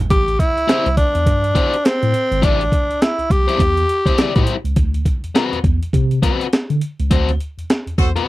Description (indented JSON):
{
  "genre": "funk",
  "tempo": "103 BPM",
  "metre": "4/4",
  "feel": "swing 60% on 16ths",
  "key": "A dorian",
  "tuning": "A4 = 440 Hz",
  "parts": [
    { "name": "mellow tine electric piano", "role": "bass", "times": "0.0-8.1 s", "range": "G#1 to D3", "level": "-20 LUFS", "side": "equal", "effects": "fast stereo tremolo" },
    { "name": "raspy tenor saxophone", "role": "melody", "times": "0.1-4.5 s", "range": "C4 to G4", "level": "-18 LUFS", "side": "equal", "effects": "none" },
    { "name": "breakbeat sampler-style drum kit", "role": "drums", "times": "0.1-8.3 s", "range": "hi-hat, kick drum, snare drum", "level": "-17 LUFS", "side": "equal", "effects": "none" },
    { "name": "biting overdriven guitar", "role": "accompaniment", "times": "0.7-8.3 s", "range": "C4 to D5", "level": "-20 LUFS", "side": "left 6 dB", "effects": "none" },
    { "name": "warm horn section", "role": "second line", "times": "8.0-8.1 s", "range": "F#4 to C5", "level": "-22 LUFS", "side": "right 1 dB", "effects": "none" }
  ],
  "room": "little or no reverb",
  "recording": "dry, close 1970s-style studio recording",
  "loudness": "-15 LUFS",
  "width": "side -17 dB against mid",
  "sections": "0.1-8.3 A section",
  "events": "band accent 7.1-8.3",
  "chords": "0.1 Am7; 4.8 D13"
}